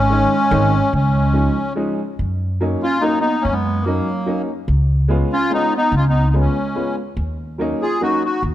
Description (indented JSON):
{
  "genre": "musette waltz",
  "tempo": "144 BPM",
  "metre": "3/4",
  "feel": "rubato",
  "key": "F# major",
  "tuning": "A4 = 439 Hz",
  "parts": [
    { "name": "accordion", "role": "melody", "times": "0.0-8.4 s", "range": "A#3 to G#4", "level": "-19 LUFS", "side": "left 2 dB", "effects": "light tremolo tuning" },
    { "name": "clear clarinet", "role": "second line", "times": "0.0-8.4 s", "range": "F#3 to E#4", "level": "-24 LUFS", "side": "right 5 dB", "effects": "none" },
    { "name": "upright bass", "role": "bass", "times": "0.0-8.5 s", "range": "Ab1 to F#2", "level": "-18 LUFS", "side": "equal", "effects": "none" },
    { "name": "clear upright piano", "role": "accompaniment", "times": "0.1-8.2 s", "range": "Eb3 to E#4", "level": "-24 LUFS", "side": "equal", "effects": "none" }
  ],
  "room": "moderate concert hall reverb, RT60 1.9 s",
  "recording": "close, detailed microphones",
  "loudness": "-16 LUFS",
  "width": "side -13 dB against mid",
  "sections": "0.0-2.2 A section; 2.2-8.5 B section",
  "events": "none",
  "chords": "0.0 Absus4; 0.5 Ab; 0.9 Dbadd9; 2.2 F#6; 4.7 C#7; 7.2 D#m7"
}